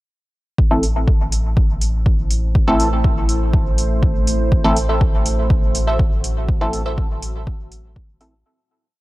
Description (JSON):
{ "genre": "dub techno", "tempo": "122 BPM", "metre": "4/4", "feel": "straight", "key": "A dorian", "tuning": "A4 = 440 Hz", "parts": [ { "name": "deep dark ambient pad", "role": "sustained chords", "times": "2.3-8.4 s", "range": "A3 to C5", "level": "-26 LUFS", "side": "right 2 dB", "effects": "chorus, built-in reverb, sidechain pumping" }, { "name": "soft dub sub bass", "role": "bass", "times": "0.6-8.4 s", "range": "A1", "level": "-21 LUFS", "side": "equal", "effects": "transformer saturation, sidechain pumping" }, { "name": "electronic kick drum", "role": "drums", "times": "0.6-8.1 s", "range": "none", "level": "-17 LUFS", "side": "equal", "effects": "none" }, { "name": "filtered dub chord stab", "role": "stabs", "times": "0.7-8.3 s", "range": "E3 to A4", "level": "-22 LUFS", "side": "equal", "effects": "chorus, phaser, sidechain pumping, dub echo" }, { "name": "electronic hi-hat", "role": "drums", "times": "0.8-8.3 s", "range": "none", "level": "-26 LUFS", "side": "right 1 dB", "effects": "none" }, { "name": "wavetable chord stab", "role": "riff", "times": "4.9-6.9 s", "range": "A4 to E5", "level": "-26 LUFS", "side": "right 2 dB", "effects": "sidechain pumping, dub echo" } ], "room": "digital ambience", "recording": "dry, gritty hardware recording", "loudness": "-15 LUFS", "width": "side -18 dB against mid", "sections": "0.6-8.5 groove", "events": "fade-out 5.8-8.5", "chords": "0.6 Am", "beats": "| 0.58 1.08 1.57 2.06 | 2.55 3.04 3.54 4.03 | 4.52 5.01 5.50 6.00 | 6.49 6.98 7.47 7.96" }